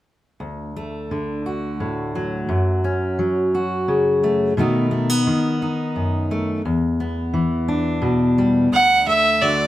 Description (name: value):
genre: folk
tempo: 58 BPM (dotted quarters)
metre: 6/8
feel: straight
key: D major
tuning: A4 = 440 Hz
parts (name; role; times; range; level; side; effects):
- fingerpicked steel-string acoustic guitar; accompaniment; 0.4-9.7 s; D2 to F#4; -19 LUFS; left 1 dB; none
- clear fiddle; melody; 8.7-9.7 s; D5 to F#5; -14 LUFS; right 2 dB; none
room: moderate studio reverb, RT60 0.8 s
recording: none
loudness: -17 LUFS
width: side -14 dB against mid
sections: 0.4-8.7 A section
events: none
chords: 0.4 D; 2.5 F#m; 4.6 B7; 6.6 Em7; 8.7 D